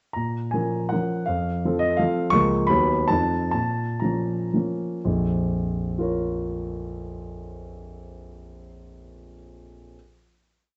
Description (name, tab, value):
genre	classical, romantic triple-time dance for piano with dotted rhythms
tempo	114-182 BPM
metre	3/4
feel	rubato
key	Bb minor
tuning	A4 = 440 Hz
part	warm grand piano	solo	0.1-10.0 s	Bb1 to Db6	-25 LUFS	equal	none
room	moderate large studio reverb, RT60 0.8 s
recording	heard from further back in the room, nothing above 8.0 kHz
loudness	-24 LUFS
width	mono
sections	0.2-5.0 A section; 5.0-7.9 final chord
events	slowing down 1.8-5.0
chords	0.2 Bbm; 1.3 F; 2.3 Bbm/Db; 2.7 B/D#; 3.1 F7; 3.5 Bbm